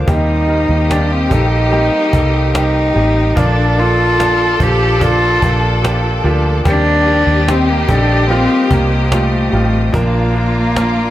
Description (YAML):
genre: pop ballad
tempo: 73 BPM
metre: 4/4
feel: straight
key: unclear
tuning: A4 = 440 Hz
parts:
  - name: bright concert grand piano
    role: accompaniment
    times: 0.0-11.1 s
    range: Bb2 to D5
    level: -20 LUFS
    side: right 1 dB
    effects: none
  - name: rich studio string section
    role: sustained chords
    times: 0.0-11.1 s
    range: F4 to Eb6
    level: -28 LUFS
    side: left 2 dB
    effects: none
  - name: vintage muted fingered electric bass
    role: bass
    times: 0.0-11.1 s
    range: A1 to Eb2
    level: -15 LUFS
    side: equal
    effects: none
  - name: warm cello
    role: melody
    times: 0.1-11.1 s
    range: A3 to G4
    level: -15 LUFS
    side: equal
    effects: none
  - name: warm symphonic violin section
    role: second line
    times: 0.1-11.1 s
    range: F4 to A4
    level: -21 LUFS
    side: left 1 dB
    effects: tape echo
  - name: cajon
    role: drums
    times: 0.1-11.0 s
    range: none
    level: -19 LUFS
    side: equal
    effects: none
room: light reverb, small room ambience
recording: none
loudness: -11 LUFS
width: side -14 dB against mid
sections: 0.0-11.1 A section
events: none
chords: 0.1 Eb6; 3.4 Bb; 6.7 Eb6; 9.9 Bb